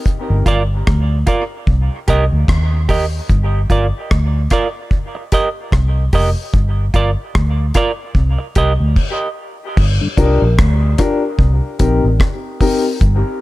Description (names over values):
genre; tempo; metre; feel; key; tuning
dub reggae; 74 BPM; 4/4; swing 57% on 16ths; G minor; A4 = 439 Hz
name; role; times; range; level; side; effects
deep reggae drum kit; drums; 0.1-13.2 s; crash cymbal, hi-hat, kick drum, rim click; -16 LUFS; equal; none
vintage muted fingered electric bass; bass; 0.3-13.2 s; F1 to Eb2; -15 LUFS; equal; none
semi-hollow electric guitar; accompaniment; 0.5-8.7 s; F4 to Eb5; -21 LUFS; right 4 dB; dub echo
mellow tonewheel organ; accompaniment; 10.0-10.1 s; G2 to D3; -22 LUFS; left 3 dB; overdrive, chorus vibrato, slow rotary speaker, dub echo
warm upright piano; stabs; 10.2-12.8 s; C4 to Bb4; -19 LUFS; left 4 dB; dub echo
room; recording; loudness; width
studio reverb; none; -13 LUFS; side -18 dB against mid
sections
0.0-9.8 A section; 9.8-13.4 B section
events
break 0.1-9.8; stop 9.0-9.8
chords
0.1 Gm7; 1.7 Cm7; 3.3 Gm7; 4.9 Cm7; 6.5 Gm7; 8.2 Cm7; 9.8 Gm7; 11.4 Cm7